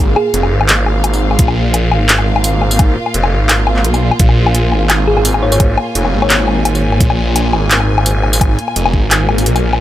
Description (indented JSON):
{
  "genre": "half-time drum and bass",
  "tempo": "171 BPM",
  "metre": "4/4",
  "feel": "swing 54% on 16ths, half-time",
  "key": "unclear",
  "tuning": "A4 = 440 Hz",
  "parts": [
    { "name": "warm studio string section", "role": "sustained chords", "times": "0.0-9.8 s", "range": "Bb2 to Ab5", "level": "-20 LUFS", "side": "equal", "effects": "sidechain pumping" },
    { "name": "phased detuned saw bass", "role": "bass", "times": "0.0-9.8 s", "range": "F1 to Cb2", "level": "-13 LUFS", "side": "equal", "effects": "phaser" },
    { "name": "thumb-piano-like synth pluck", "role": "melody", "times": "0.2-0.7, 5.1-6.5 s", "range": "Ab4 to Db5", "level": "-20 LUFS", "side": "equal", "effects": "chorus, digital delay" },
    { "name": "drum and bass drum kit", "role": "drums", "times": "0.2-9.8 s", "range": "handclaps, hi-hat, tambourine, woodblock", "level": "-15 LUFS", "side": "left 2 dB", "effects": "overdrive" },
    { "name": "electronic kick drum", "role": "drums", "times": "1.4-9.0 s", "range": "none", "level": "-12 LUFS", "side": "equal", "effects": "overdrive" },
    { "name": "swell", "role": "sound effects", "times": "9.3-9.8 s", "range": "none", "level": "-21 LUFS", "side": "left 4 dB", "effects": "none" }
  ],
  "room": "little or no reverb",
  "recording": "none",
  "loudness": "-10 LUFS",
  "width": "side -13 dB against mid",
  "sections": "0.0-9.8 A section",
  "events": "swell 9.3-9.8",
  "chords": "0.0 Bb5"
}